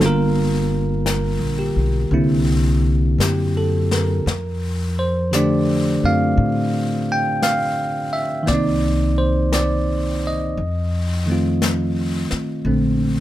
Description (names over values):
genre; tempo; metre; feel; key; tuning
jazz ballad; 57 BPM; 4/4; swing 67% on 8ths; F major; A4 = 440 Hz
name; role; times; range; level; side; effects
bell-like tine electric piano; accompaniment; 0.0-13.2 s; D3 to G5; -19 LUFS; right 1 dB; none
upright bass; bass; 0.0-13.2 s; G1 to A2; -21 LUFS; left 1 dB; none
jazz brush drum kit; drums; 0.0-13.2 s; brushed snare drum, hi-hat, snare drum; -28 LUFS; left 4 dB; none
room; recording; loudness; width
moderate studio reverb, RT60 0.5 s; none; -17 LUFS; side -14 dB against mid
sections
0.0-4.3 A section; 4.3-13.2 B section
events
none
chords
0.0 Gm7; 2.1 C9; 4.3 F69; 8.5 Cm7; 10.6 F7; 12.7 Bbmaj9